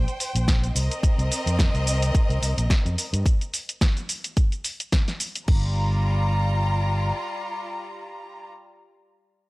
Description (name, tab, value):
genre	nu-disco, nu disco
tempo	108 BPM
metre	4/4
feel	swing 55% on 16ths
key	G minor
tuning	A4 = 440 Hz
part	rich studio violin section	sustained chords	0.0-8.5 s	G3 to Bb5	-30 LUFS	left 1 dB	sidechain pumping
part	fingered electric bass	bass	0.0-7.1 s	G1 to G2	-23 LUFS	equal	transformer saturation
part	house drum kit	drums	0.1-5.6 s	crash cymbal, hi-hat, shaker, snare drum	-28 LUFS	equal	studio reverb
part	electronic kick drum	drums	0.5-5.6 s	none	-20 LUFS	equal	studio reverb
room	digital ambience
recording	dry, gritty hardware recording, cassette tape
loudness	-21 LUFS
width	side -22 dB against mid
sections	0.0-5.5 A section; 5.5-7.7 B section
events	drop 0.0-5.5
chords	0.0 Eb (rootless); 0.8 Cm7; 5.5 Gm7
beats	0.48 | 1.03 1.59 2.15 2.70 | 3.26 3.81 4.37 4.92 | 5.48 6.04 6.59 7.15